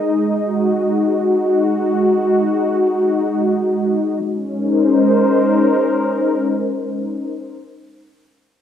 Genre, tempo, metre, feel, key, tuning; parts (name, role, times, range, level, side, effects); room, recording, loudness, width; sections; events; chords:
ambient; free time; Bb minor; A4 = 440 Hz
warm analog pad; sustained chords; 0.0-7.6 s; Ab3 to Eb5; -15 LUFS; left 1 dB; chorus
wet echo chamber reverb, RT60 1.5 s, small room ambience; -15 LUFS; side -9 dB against mid
0.0-4.2 A section; 4.2-6.8 B section
0.0 Ab5; 4.2 Bbm11